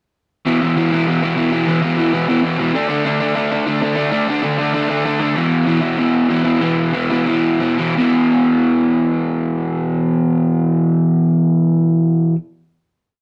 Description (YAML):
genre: punk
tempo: 166-197 BPM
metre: 4/4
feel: straight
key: unclear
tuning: A4 = 441 Hz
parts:
  - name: crunchy overdriven guitar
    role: solo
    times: 0.5-12.4 s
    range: E2 to D4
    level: -16 LUFS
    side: equal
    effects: none
room: light reverb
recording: rough rehearsal-room recording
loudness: -17 LUFS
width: mono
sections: 0.5-5.3 riff; 5.3-8.0 outro; 8.0-10.8 final chord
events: slowing down 5.3-8.0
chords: 0.5 E5; 2.7 D5; 5.3 E5